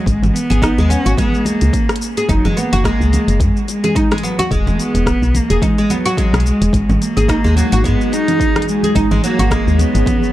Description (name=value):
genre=organic downtempo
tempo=108 BPM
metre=4/4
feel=swing 56% on 16ths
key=G# minor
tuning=A4 = 440 Hz
part: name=dark cello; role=melody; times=0.0-10.3 s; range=F#3 to D#4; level=-18 LUFS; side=equal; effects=digital delay
part: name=oud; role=arpeggios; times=0.0-10.1 s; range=F#3 to G#4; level=-20 LUFS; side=equal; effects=tape echo
part: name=woody FM bass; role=bass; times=0.1-10.0 s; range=E1 to G#2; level=-15 LUFS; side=equal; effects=none
part: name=deep house drum kit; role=drums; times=0.1-10.3 s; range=congas, hi-hat, rim click, shaker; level=-23 LUFS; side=right 1 dB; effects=none
part: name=electronic kick drum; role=drums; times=0.1-10.2 s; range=none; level=-19 LUFS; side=equal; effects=none
part: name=congas and bongos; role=percussion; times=0.5-10.3 s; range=none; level=-27 LUFS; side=left 3 dB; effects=none
part: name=ethereal airy pad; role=sustained chords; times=7.6-10.3 s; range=E3 to C#5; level=-23 LUFS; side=right 1 dB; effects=ensemble chorus, built-in reverb, sidechain pumping
room=little or no reverb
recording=dark, warm production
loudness=-12 LUFS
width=side -14 dB against mid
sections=0.0-10.3 A section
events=none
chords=0.1 N.C.; 2.3 F#sus4; 4.5 Eadd9; 6.7 G#5; 9.0 C#m7/G#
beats=| 0.07 0.62 1.18 1.73 | 2.29 2.85 3.40 3.96 | 4.51 5.07 5.62 6.18 | 6.73 7.29 7.84 8.40 | 8.96 9.51 10.07